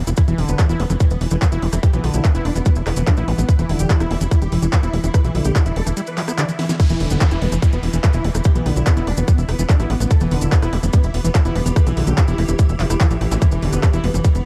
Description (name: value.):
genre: psychedelic trance.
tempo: 145 BPM.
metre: 4/4.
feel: straight.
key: E phrygian.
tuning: A4 = 441 Hz.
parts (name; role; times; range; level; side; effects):
tight sequencer bass; bass; 0.0-14.4 s; E1 to B1; -22 LUFS; equal; none.
overdriven acid bass; riff; 0.1-14.3 s; D3 to E4; -27 LUFS; equal; sidechain pumping, digital delay.
drum and bass drum kit; drums; 0.1-14.4 s; crash cymbal, handclaps, hi-hat, rim click, snare drum; -30 LUFS; equal; overdrive, small room reverb.
maracas; percussion; 0.1-14.4 s; none; -36 LUFS; equal; none.
dense compressed supersaw; melody; 0.2-14.4 s; E3 to D5; -30 LUFS; equal; phaser, sidechain pumping, digital delay.
swarming drone; sustained chords; 1.7-14.5 s; E3 to G4; -32 LUFS; equal; built-in reverb, sidechain pumping.
electronic kick drum; drums; 0.2-14.3 s; none; -17 LUFS; equal; overdrive, small room reverb.
downlifter and zap; sound effects; 6.8-10.1, 13.3-13.4 s; none; -38 LUFS; equal; none.
room: little or no reverb.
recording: dark, warm production.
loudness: -17 LUFS.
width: mono.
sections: 0.0-6.8 A section; 6.8-14.5 B section.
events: break 6.0-6.8; drum fill 6.6; drop 6.8-14.5.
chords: 0.0 E5.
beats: | 0.18 0.59 1.00 1.42 | 1.83 2.25 2.66 3.07 | 3.49 3.90 4.31 4.73 | 5.14 5.55 5.97 6.38 | 6.80 7.21 7.62 8.04 | 8.45 8.87 9.28 9.69 | 10.11 10.52 10.94 11.35 | 11.76 12.18 12.59 13.00 | 13.42 13.83 14.24.